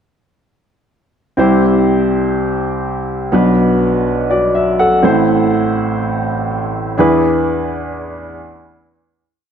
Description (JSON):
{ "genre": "pop", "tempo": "free time", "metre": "none", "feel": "none", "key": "unclear", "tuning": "A4 = 437 Hz", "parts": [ { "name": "warm baby grand piano", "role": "solo", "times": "1.4-9.2 s", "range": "A1 to F#5", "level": "-12 LUFS", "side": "equal", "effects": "none" } ], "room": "moderate plate reverb, RT60 2.6 s", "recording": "none", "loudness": "-12 LUFS", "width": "side -8 dB against mid", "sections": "1.4-9.2 pre-chorus", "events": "fade-out 7.2-9.2", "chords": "1.4 C; 3.3 Bm; 5.0 Am; 7.0 E7" }